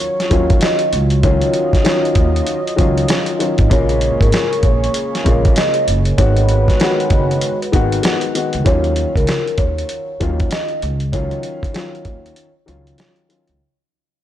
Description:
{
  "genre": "hip hop, boom-bap hip-hop",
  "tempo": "97 BPM",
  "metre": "4/4",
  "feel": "swing 62% on 16ths",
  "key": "Eb minor",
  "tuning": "A4 = 438 Hz",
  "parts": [
    { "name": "vibraphone with soft mallets", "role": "melody", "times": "0.0-12.5 s", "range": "Bb4 to Eb5", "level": "-21 LUFS", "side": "right 1 dB", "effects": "high-pass filter, low-pass filter, digital delay" },
    { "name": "dark upright piano", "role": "accompaniment", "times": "0.0-13.6 s", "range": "Db3 to Gb4", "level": "-21 LUFS", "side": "left 4 dB", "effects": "high-pass filter, low-pass filter" },
    { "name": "dark analog pad", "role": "sustained chords", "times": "0.0-8.6 s", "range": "Gb3 to Eb5", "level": "-25 LUFS", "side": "right 1 dB", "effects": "chorus, high-pass filter, low-pass filter" },
    { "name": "dusty soul sampler-style drum kit", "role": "drums", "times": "0.2-13.6 s", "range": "hi-hat, kick drum, snare drum", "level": "-17 LUFS", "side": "equal", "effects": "none" },
    { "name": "upright bass", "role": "bass", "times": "0.3-13.6 s", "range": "Gb1 to Eb2", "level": "-18 LUFS", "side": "right 1 dB", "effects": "none" }
  ],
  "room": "little or no reverb",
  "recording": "blown-out, overdriven recording, overdrive",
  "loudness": "-13 LUFS",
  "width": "side -12 dB against mid",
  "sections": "0.0-8.7 A section; 8.7-13.6 B section",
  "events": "fade-out 8.7-13.6; break 12.4-13.6",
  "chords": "0.0 Ebm9; 3.7 Bbm7; 6.2 Abm7; 8.7 Ebm9"
}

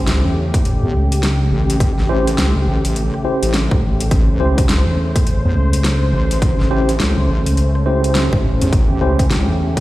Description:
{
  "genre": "glitch hop",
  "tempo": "104 BPM",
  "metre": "4/4",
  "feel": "swing 62% on 16ths",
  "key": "unclear",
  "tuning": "A4 = 436 Hz",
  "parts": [
    { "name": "warm analog pad", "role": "sustained chords", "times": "0.0-9.8 s", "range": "C#3 to B#4", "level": "-23 LUFS", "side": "left 1 dB", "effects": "chorus, sidechain pumping" },
    { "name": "overdriven fingered electric bass", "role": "bass", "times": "0.0-9.8 s", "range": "A1 to E2", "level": "-17 LUFS", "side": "equal", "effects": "none" },
    { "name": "wobble bass", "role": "bass", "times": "0.1-9.5 s", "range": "A1 to E2", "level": "-17 LUFS", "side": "equal", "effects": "chorus, tube saturation" },
    { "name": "dubstep drum kit", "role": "drums", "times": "0.1-9.8 s", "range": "hi-hat, rim click, snare drum", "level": "-23 LUFS", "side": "equal", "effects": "none" },
    { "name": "electronic kick drum", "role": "drums", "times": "0.5-9.8 s", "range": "none", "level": "-16 LUFS", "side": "equal", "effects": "none" },
    { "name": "mellow tine electric piano", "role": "stabs", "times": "2.1-9.2 s", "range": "C#4 to B#4", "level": "-22 LUFS", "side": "equal", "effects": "medium stereo tremolo, sidechain pumping, digital delay" }
  ],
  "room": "light reverb",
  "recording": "played on a big sound system in a bare room, large studio reverb",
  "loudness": "-14 LUFS",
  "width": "side -17 dB against mid",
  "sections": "0.0-9.8 A section",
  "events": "none",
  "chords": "0.0 A7#9"
}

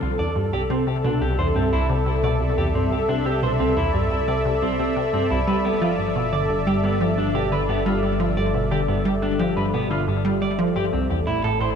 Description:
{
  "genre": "ambient, sequencer-driven space music",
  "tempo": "88 BPM",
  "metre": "4/4",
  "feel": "straight",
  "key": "unclear",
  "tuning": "A4 = 439 Hz",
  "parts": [
    { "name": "lush unison pad", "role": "sustained chords", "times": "0.0-11.8 s", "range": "A3 to E5", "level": "-25 LUFS", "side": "left 1 dB", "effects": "chorus" },
    { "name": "resonant blip pluck", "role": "riff", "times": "0.0-11.7 s", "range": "C2 to G3", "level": "-23 LUFS", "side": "equal", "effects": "chorus, ping-pong delay" },
    { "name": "fat analog bass", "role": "bass", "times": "0.0-11.8 s", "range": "G1 to C2", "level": "-28 LUFS", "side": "equal", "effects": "none" },
    { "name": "clean electric guitar", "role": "arpeggios", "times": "0.2-11.7 s", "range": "B3 to D5", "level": "-26 LUFS", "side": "moving between left 4 dB and right 4 dB", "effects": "auto-pan, ping-pong delay" }
  ],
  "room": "wet spring reverb, RT60 2.5 s",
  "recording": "echo-heavy mix",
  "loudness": "-19 LUFS",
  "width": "side -7 dB against mid",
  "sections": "0.0-11.8 A section",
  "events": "none",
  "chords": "0.0 Cadd9; 5.5 G7; 10.9 Am"
}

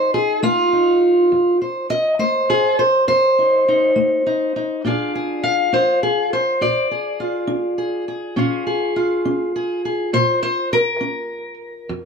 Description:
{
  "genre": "acoustic country blues, solo or duo",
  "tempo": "68 BPM (dotted quarters)",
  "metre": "12/8",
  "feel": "straight",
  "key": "unclear",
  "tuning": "A4 = 444 Hz",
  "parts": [
    { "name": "fingerpicked steel-string acoustic guitar", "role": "solo", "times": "0.0-12.1 s", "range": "F2 to F5", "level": "-16 LUFS", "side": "equal", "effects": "none" }
  ],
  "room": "moderate studio reverb, RT60 0.6 s",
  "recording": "none",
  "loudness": "-16 LUFS",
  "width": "side -5 dB against mid",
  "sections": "0.0-12.1 A section",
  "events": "none",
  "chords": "0.0 F7; 4.8 Bb7; 8.4 Bbm7"
}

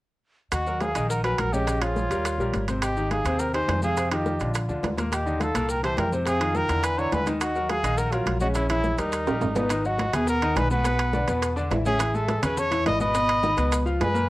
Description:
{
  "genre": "Afro-Cuban jazz",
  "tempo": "209 BPM",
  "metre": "4/4",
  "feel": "straight",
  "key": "G# minor from 9.7 s",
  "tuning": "A4 = 439 Hz",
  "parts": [
    { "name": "breathy trumpet", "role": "melody", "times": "0.5-14.3 s", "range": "Eb4 to D#5", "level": "-27 LUFS", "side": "equal", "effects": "cassette tape" },
    { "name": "hollow concert flute", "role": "second line", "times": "0.5-14.3 s", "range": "Bb4 to B5", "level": "-32 LUFS", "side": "right 2 dB", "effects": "none" },
    { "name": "upright bass", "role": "bass", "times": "0.5-14.3 s", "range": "Ab1 to F#2", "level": "-28 LUFS", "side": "equal", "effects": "none" },
    { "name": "bongos", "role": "percussion", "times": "0.5-14.3 s", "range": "none", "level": "-38 LUFS", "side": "left 5 dB", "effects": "none" },
    { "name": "congas", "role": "percussion", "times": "0.5-14.2 s", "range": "none", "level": "-35 LUFS", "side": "left 1 dB", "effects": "none" },
    { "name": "maracas", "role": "percussion", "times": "0.5-14.3 s", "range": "none", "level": "-42 LUFS", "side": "left 2 dB", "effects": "none" },
    { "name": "timbales", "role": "percussion", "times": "0.5-14.2 s", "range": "none", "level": "-31 LUFS", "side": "right 5 dB", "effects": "none" },
    { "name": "clear grand piano", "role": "accompaniment", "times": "0.7-14.3 s", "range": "Bb2 to G#5", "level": "-28 LUFS", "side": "left 1 dB", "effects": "none" }
  ],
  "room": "moderate studio reverb, RT60 0.6 s",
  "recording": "home recording on cassette",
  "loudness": "-22 LUFS",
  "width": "side -17 dB against mid",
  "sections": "0.5-9.7 A section; 9.7-14.3 B section",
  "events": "drum fill 9.3-9.7",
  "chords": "0.5 Ebm9; 1.7 Bbm7; 2.2 Eb9; 2.8 Ab6; 4.0 Fsus2; 4.5 Bb; 5.1 Ebmaj9; 5.7 C7; 6.3 Fm9; 6.8 E7#11; 7.4 Ebm9; 8.6 Bbm7b5; 9.1 Eb; 9.7 G#m9; 10.8 Bm; 11.4 E5; 12.0 Amaj9; 13.1 G#m; 13.7 C#7"
}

